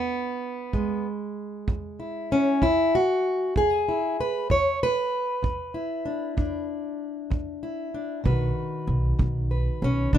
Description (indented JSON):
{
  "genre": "acoustic country blues, solo or duo",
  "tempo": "64 BPM (dotted quarters)",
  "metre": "12/8",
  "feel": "straight",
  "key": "E mixolydian",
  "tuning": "A4 = 439 Hz",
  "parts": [
    { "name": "fingerpicked plugged-in steel-string acoustic guitar", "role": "melody", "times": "0.0-10.2 s", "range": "E2 to C#5", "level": "-25 LUFS", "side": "equal", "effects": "none" },
    { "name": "kick drum", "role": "drums", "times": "0.7-10.2 s", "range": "none", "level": "-27 LUFS", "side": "right 2 dB", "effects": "none" },
    { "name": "upright bass", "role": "bass", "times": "8.3-10.2 s", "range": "B1", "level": "-24 LUFS", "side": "equal", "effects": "none" }
  ],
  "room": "light reverb",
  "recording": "minimal, uncompressed stereo recording",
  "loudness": "-24 LUFS",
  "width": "side -10 dB against mid",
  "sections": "0.0-10.2 A section",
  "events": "steel-string acoustic guitar solo 0.0-10.2",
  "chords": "0.0 E7; 8.3 B"
}